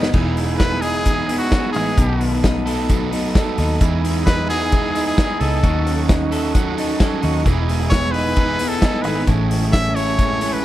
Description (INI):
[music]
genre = jangly indie pop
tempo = 132 BPM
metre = 4/4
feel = straight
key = E major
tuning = A4 = 440 Hz
[part]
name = crunchy overdriven guitar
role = accompaniment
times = 0.0-10.6 s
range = A2 to A4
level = -26 LUFS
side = right 7 dB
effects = none
[part]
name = electric guitar through a small old amp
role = arpeggios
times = 0.0-10.6 s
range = A2 to A4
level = -23 LUFS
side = left 4 dB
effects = plate reverb
[part]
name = vintage muted picked electric bass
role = bass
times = 0.0-10.6 s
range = E1 to E2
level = -23 LUFS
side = equal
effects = none
[part]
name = vintage drum kit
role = drums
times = 0.0-10.5 s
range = crash cymbal, hi-hat, kick drum, snare drum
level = -20 LUFS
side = equal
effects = none
[part]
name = overdriven combo organ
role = accompaniment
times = 0.1-10.6 s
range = A3 to C#6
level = -28 LUFS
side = right 7 dB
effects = plate reverb
[part]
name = brilliant trumpet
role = melody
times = 0.6-10.6 s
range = F#4 to E5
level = -23 LUFS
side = equal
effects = plate reverb
[sound]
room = light reverb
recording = none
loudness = -16 LUFS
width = side -14 dB against mid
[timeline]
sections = 0.1-10.6 A section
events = transistor combo organ fill 6.1-7.5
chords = 0.1 Emaj7; 2.0 B7; 3.8 Emaj7; 5.6 D#m7b5; 7.5 Emaj7; 9.3 Amaj7